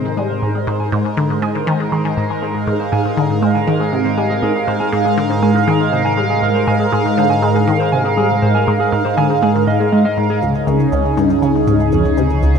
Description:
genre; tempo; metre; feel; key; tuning
ambient, sequencer-driven space music; 120 BPM; 4/4; straight; Ab lydian; A4 = 444 Hz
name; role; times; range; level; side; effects
phased analog pad; sustained chords; 0.0-12.6 s; Ab2 to F5; -16 LUFS; right 1 dB; phaser, chorus
resonant blip pluck; riff; 0.0-12.5 s; Db2 to Ab3; -18 LUFS; left 1 dB; chorus, phaser, ping-pong delay
mellow electric guitar; arpeggios; 0.1-12.6 s; Ab3 to Ab5; -23 LUFS; right 1 dB; auto-pan, ping-pong delay
round analog bass; bass; 10.4-12.6 s; Db2; -21 LUFS; equal; none
shaker and bongos; percussion; 10.4-12.6 s; none; -47 LUFS; left 2 dB; ping-pong delay
room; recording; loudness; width
wet plate reverb, RT60 3.1 s; dreamy mix soaked in reverb; -13 LUFS; side -6 dB against mid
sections
0.0-10.4 A section; 10.4-12.6 B section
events
fade-in on clean electric guitar 0.0-10.4; fade-in on analog synth pad 0.0-10.4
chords
0.0 Abadd9; 10.4 Dbsus2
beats
| 0.42 0.92 1.42 1.92 | 2.42 2.92 3.42 3.92 | 4.42 4.92 5.42 5.92 | 6.42 6.92 7.42 7.92 | 8.42 8.92 9.42 9.92 | 10.42 10.92 11.42 11.92 | 12.42

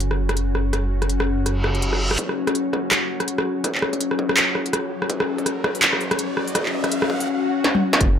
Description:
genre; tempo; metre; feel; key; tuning
half-time drum and bass; 165 BPM; 4/4; swing 58% on 16ths, half-time; unclear; A4 = 439 Hz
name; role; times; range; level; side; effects
bowed-like drone; sustained chords; 0.0-8.2 s; F#3 to C#5; -25 LUFS; left 4 dB; built-in reverb, sidechain pumping
dark detuned saw bass; bass; 0.0-8.2 s; F#1 to G#1; -26 LUFS; equal; high-pass filter
industrial drum kit; drums; 0.0-8.1 s; handclaps, hi-hat, rim click, snare drum, toms; -21 LUFS; equal; none
reverse cymbal, riser, swell and impact; sound effects; 1.6-8.2 s; none; -29 LUFS; right 1 dB; none
electronic kick drum; drums; 2.2-8.1 s; none; -28 LUFS; equal; distortion, high-pass filter on kick, high-pass filter on room
room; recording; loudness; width
moderate digital room reverb, RT60 1.2 s, digital ambience; none; -19 LUFS; side -8 dB against mid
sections
0.0-2.2 A section; 2.2-8.0 B section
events
filter sweep on synth drone 0.0-2.2; reverse cymbal 1.6-2.2; build-up 2.2-8.0; riser 2.2-7.3; swell 7.3-8.0; drum fill 7.6-8.0; impact 8.0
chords
0.0 F#5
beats
0.01 0.37 | 0.73 1.10 1.46 1.82 | 2.19 2.55 2.92 3.28 | 3.64 4.01 4.37 4.73 | 5.10 5.46 5.83 6.19 | 6.55 6.92 7.28 7.64 | 8.01

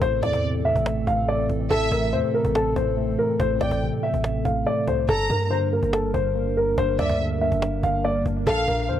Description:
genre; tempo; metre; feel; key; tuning
hip hop, trap; 142 BPM; 4/4; half-time; A phrygian; A4 = 439 Hz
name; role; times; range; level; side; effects
dark concert grand piano; melody; 0.0-9.0 s; A4 to F5; -24 LUFS; left 1 dB; low-pass filter, analog delay
mellow tine electric piano; accompaniment; 0.0-9.0 s; G2 to Bb3; -27 LUFS; equal; medium stereo tremolo, low-pass filter
dark analog pad; sustained chords; 0.0-9.0 s; E3 to Bb4; -30 LUFS; right 1 dB; chorus
long sustained 808-style bass; bass; 0.0-9.0 s; G1 to G2; -28 LUFS; right 1 dB; none
cajon; drums; 0.0-8.9 s; none; -30 LUFS; right 1 dB; none
warm studio violin section; second line; 0.2-8.9 s; D5 to Bb5; -29 LUFS; right 1 dB; analog delay
room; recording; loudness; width
little or no reverb; dry, gritty hardware recording; -20 LUFS; side -10 dB against mid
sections
0.0-9.0 A section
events
none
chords
0.0 Am; 5.1 Gm; 8.5 Bb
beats
| 0.02 0.44 0.86 1.28 | 1.71 2.13 2.55 2.97 | 3.40 3.82 4.24 4.66 | 5.09 5.51 5.93 6.35 | 6.78 7.20 7.62 8.04 | 8.47 8.89

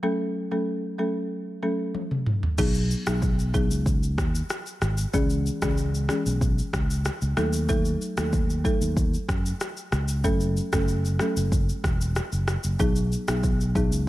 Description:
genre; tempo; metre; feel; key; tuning
afrobeats; 94 BPM; 4/4; straight; unclear; A4 = 439 Hz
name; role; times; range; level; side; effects
folk marimba with medium mallets; accompaniment; 0.0-14.0 s; E3 to A4; -28 LUFS; equal; none
afro-pop drum kit; drums; 1.9-14.1 s; crash cymbal, kick drum, rim click, shaker, toms; -26 LUFS; equal; none
fingered electric bass; bass; 2.6-14.1 s; E1 to F#2; -26 LUFS; equal; none
room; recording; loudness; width
little or no reverb; none; -23 LUFS; side -16 dB against mid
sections
0.0-2.6 A section; 2.6-14.1 B section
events
drum fill 1.9-2.6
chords
0.0 F#m; 2.6 B6; 5.1 C#m; 7.4 D#dim; 10.2 F#m; 12.8 B6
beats
| 0.03 0.67 1.31 1.95 | 2.58 3.22 3.86 4.50 | 5.14 5.78 6.41 7.05 | 7.69 8.33 8.97 9.61 | 10.24 10.88 11.52 12.16 | 12.80 13.44 14.07

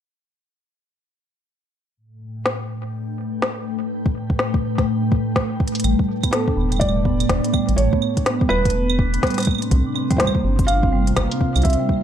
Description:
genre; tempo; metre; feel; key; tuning
IDM; 124 BPM; 4/4; swing 62% on 16ths; unclear; A4 = 440 Hz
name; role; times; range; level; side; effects
glassy FM pad; sustained chords; 2.2-12.0 s; A2 to G5; -24 LUFS; left 1 dB; ensemble chorus, built-in reverb
organic electronic drum kit; drums; 2.5-11.8 s; claves, hi-hat, snare drum; -24 LUFS; left 1 dB; studio ambience
electronic kick drum; drums; 4.1-12.0 s; none; -20 LUFS; equal; studio ambience
vibraphone with soft mallets; arpeggios; 5.8-11.8 s; G3 to D4; -24 LUFS; right 3 dB; low-pass filter, ping-pong delay
rubbery square bass; bass; 5.8-11.8 s; E1 to C2; -20 LUFS; equal; none
felt-muted upright piano; melody; 6.3-12.0 s; A4 to F5; -25 LUFS; right 1 dB; tape echo
room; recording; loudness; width
light reverb, digital ambience; none; -18 LUFS; side -9 dB against mid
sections
2.0-5.8 A section; 5.8-12.0 B section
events
filter sweep on ambient pad 2.0-5.8; drum fill 5.6; filter sweep on vibraphone 5.8-12.0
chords
2.0 A9sus4; 9.5 C9sus4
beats
| 1.97 2.46 2.94 3.42 | 3.91 4.39 4.88 5.36 | 5.84 6.33 6.81 7.29 | 7.78 8.26 8.75 9.23 | 9.71 10.20 10.68 11.16 | 11.65

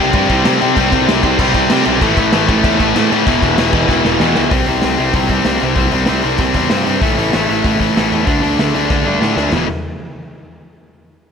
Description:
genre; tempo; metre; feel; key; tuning
punk rock; 192 BPM; 4/4; straight; unclear; A4 = 436 Hz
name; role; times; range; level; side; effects
distorted electric guitar; riff; 0.0-9.7 s; E2 to D4; -16 LUFS; left 15 dB; overdrive
distorted electric guitar; riff; 0.0-4.5 s; E2 to C4; -18 LUFS; left 1 dB; overdrive
sludgy distorted guitar; riff; 0.0-9.6 s; E2 to D4; -18 LUFS; right 12 dB; overdrive
fuzz picked electric bass; bass; 0.0-9.7 s; E1 to C3; -21 LUFS; equal; overdrive
raw garage drum kit; drums; 0.1-9.6 s; crash cymbal, hi-hat, kick drum, snare drum, toms; -18 LUFS; equal; none
room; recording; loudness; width
light reverb; none; -11 LUFS; side -6 dB against mid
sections
0.0-4.5 A section; 4.5-9.5 B section; 9.5-10.8 C section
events
drum fill 3.9-4.5, 8.9-9.5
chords
0.0 C5; 2.0 A5; 3.3 E5; 4.5 C5; 7.0 A5; 8.3 D5; 9.5 E5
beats
0.15 0.46 | 0.77 1.08 1.39 1.71 | 2.02 2.33 2.64 2.95 | 3.26 3.57 3.88 4.19 | 4.51 4.82 5.13 5.44 | 5.76 6.07 6.38 6.70 | 7.01 7.32 7.64 7.95 | 8.27 8.58 8.89 9.21 | 9.52

